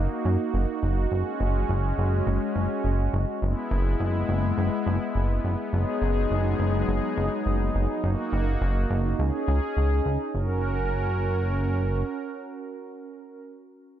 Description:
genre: synthwave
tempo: 104 BPM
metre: 4/4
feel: straight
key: F# mixolydian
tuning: A4 = 440 Hz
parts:
  - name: warm analog pad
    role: sustained chords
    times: 0.0-13.4 s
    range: F#3 to A#4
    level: -28 LUFS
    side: equal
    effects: chorus
  - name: chorused synth bass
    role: bass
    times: 0.0-12.0 s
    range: F#1 to F#2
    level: -24 LUFS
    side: equal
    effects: none
room: light reverb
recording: none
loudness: -23 LUFS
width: side -11 dB against mid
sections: 0.0-10.3 A section; 10.3-12.7 B section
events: none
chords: 0.0 D#m/F#; 1.1 F#sus2; 3.4 E/F#; 5.7 B6/F#; 8.0 D#m/F#; 9.2 C#sus2; 10.3 F#

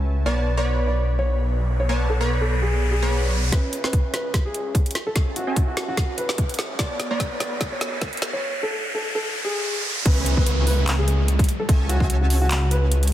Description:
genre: future bass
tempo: 147 BPM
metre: 4/4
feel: swing 55% on 16ths, half-time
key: B dorian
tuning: A4 = 435 Hz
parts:
  - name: supersaw stab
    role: riff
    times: 0.0-13.1 s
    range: B3 to C#6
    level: -30 LUFS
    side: right 1 dB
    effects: sidechain pumping, low-pass filter, digital delay
  - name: wide detuned saw bass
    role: bass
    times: 0.0-13.1 s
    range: B1 to C#2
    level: -22 LUFS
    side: equal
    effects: chorus, sidechain pumping, high-pass filter
  - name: dark grand piano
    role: melody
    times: 0.3-13.0 s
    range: F#4 to D5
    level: -29 LUFS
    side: equal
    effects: sidechain pumping, digital delay
  - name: riser and downlifter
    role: sound effects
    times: 1.0-13.1 s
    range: none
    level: -30 LUFS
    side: equal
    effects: none
  - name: electronic kick drum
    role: drums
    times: 3.5-12.1 s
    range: none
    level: -20 LUFS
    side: equal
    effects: none
  - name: trap drum kit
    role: drums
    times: 3.5-13.1 s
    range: crash cymbal, handclaps, hi-hat, snare drum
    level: -28 LUFS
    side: equal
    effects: low-pass filter on snare, low-pass filter on hats, low-pass filter on cymbals
room: light reverb, digital ambience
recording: dense, heavily limited modern master, high-pass filter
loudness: -20 LUFS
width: side -12 dB against mid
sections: 0.0-3.5 A section; 3.5-10.1 B section; 10.1-13.1 C section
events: riser 1.0-3.5, 3.5-10.1; build-up 3.5-10.1; drum fill 3.5-8.4; filter sweep on supersaw synth 3.5-10.1; filter sweep 3.5-10.1; drop 10.1-13.1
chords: 0.3 Bm7; 3.5 C#m7; 5.0 Amaj13/C#; 6.8 Bm7; 10.1 C#m7; 11.5 Amaj13/C#

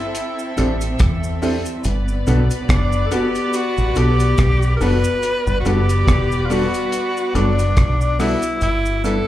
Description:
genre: lovers rock reggae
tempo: 71 BPM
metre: 4/4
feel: swing 56% on 16ths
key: G major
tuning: A4 = 440 Hz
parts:
  - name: bright tenor saxophone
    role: melody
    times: 0.0-9.3 s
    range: D4 to B4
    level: -22 LUFS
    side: left 1 dB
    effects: dub echo, slapback echo
  - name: warm studio string section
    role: second line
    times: 0.0-8.6 s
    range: B3 to E5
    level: -27 LUFS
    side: left 2 dB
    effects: slapback echo
  - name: deep reggae drum kit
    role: drums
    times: 0.1-9.3 s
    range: hi-hat, kick drum, rim click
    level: -20 LUFS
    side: equal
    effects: none
  - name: cabasa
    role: percussion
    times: 0.2-9.3 s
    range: none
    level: -38 LUFS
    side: right 3 dB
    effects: none
  - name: clear concert grand piano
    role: accompaniment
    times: 0.6-9.2 s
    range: B3 to A4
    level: -26 LUFS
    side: left 4 dB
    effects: slapback echo
  - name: mellow electric guitar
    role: stabs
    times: 0.6-9.2 s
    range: G3 to C5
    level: -26 LUFS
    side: right 1 dB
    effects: dub echo, slapback echo
  - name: deep dub fingered electric bass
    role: bass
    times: 0.6-9.2 s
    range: E1 to E2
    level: -18 LUFS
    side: equal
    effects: none
room: light reverb, studio reverb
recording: live gig heard through the venue's PA, club reverb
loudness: -16 LUFS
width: side -13 dB against mid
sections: 0.0-8.6 A section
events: none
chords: 0.0 C6; 1.8 Gmaj7; 8.6 G6

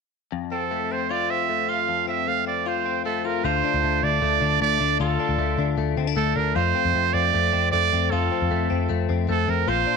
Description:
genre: jangly indie pop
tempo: 154 BPM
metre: 4/4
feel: straight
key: F major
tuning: A4 = 439 Hz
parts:
  - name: direct-recorded clean electric guitar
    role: arpeggios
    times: 0.3-10.0 s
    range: F2 to F4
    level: -26 LUFS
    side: left 14 dB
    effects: analog chorus
  - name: bright trumpet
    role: melody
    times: 0.5-10.0 s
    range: A4 to F5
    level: -23 LUFS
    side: right 12 dB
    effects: none
  - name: vintage muted picked electric bass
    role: bass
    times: 3.4-9.8 s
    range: Bb1 to F2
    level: -25 LUFS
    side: equal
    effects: none
room: light reverb, studio reverb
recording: 1960s-style stereo with parts hard left and right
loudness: -20 LUFS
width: side -5 dB against mid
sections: 0.3-3.4 A section; 3.4-10.0 B section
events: none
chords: 0.3 F; 3.4 Dm; 6.6 F

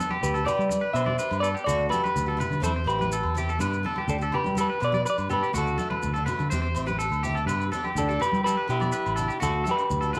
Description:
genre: highlife guitar band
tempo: 124 BPM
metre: 4/4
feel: straight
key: G major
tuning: A4 = 436 Hz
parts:
  - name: picked acoustic archtop guitar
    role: accompaniment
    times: 0.0-10.2 s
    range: E3 to G4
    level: -41 LUFS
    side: equal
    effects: none
  - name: electric guitar at the edge of break-up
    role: arpeggios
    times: 0.0-10.2 s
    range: F#4 to D5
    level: -32 LUFS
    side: equal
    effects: none
  - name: maracas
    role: percussion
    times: 0.0-10.2 s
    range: none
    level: -44 LUFS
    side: equal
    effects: none
  - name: agogo bells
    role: percussion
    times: 0.1-10.2 s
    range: none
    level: -41 LUFS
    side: equal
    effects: none
  - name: congas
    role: percussion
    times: 0.1-10.2 s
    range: none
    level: -38 LUFS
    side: equal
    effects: none
  - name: semi-hollow electric guitar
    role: melody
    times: 0.2-10.2 s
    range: D4 to E5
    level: -29 LUFS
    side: equal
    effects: none
  - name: fingered electric bass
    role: bass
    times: 0.2-10.1 s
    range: A1 to G3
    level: -31 LUFS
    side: equal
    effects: none
room: moderate echo chamber reverb, RT60 1.2 s, small room ambience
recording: none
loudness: -26 LUFS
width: mono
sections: 0.0-10.2 A section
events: none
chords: 0.0 G; 1.7 D; 2.6 C; 3.6 G; 5.5 D; 6.5 C; 7.5 G; 9.4 D

